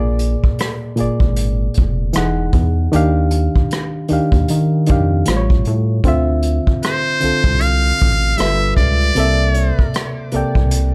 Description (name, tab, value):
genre	R&B, neo-soul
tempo	77 BPM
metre	4/4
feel	swing 62% on 16ths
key	D minor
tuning	A4 = 440 Hz
part	barky reed electric piano	accompaniment	0.0-10.9 s	A2 to G5	-22 LUFS	equal	overdrive
part	rubbery square bass	bass	0.0-10.9 s	E1 to Eb3	-20 LUFS	equal	none
part	unplugged drum kit	drums	0.2-10.9 s	hi-hat, kick drum, rim click	-20 LUFS	equal	none
part	trumpet with metal mute	melody	6.8-9.9 s	C5 to F5	-21 LUFS	equal	none
room	light reverb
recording	none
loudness	-16 LUFS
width	mono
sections	0.0-10.9 A section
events	none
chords	0.0 Bb7; 2.1 Emaj9; 2.9 Ebmaj9; 5.3 A7b13; 6.0 Dm9; 8.4 G13; 9.2 C13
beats	0.59 1.37 2.15 | 2.93 3.71 4.49 5.26 | 6.04 6.82 7.60 8.38 | 9.16 9.94 10.72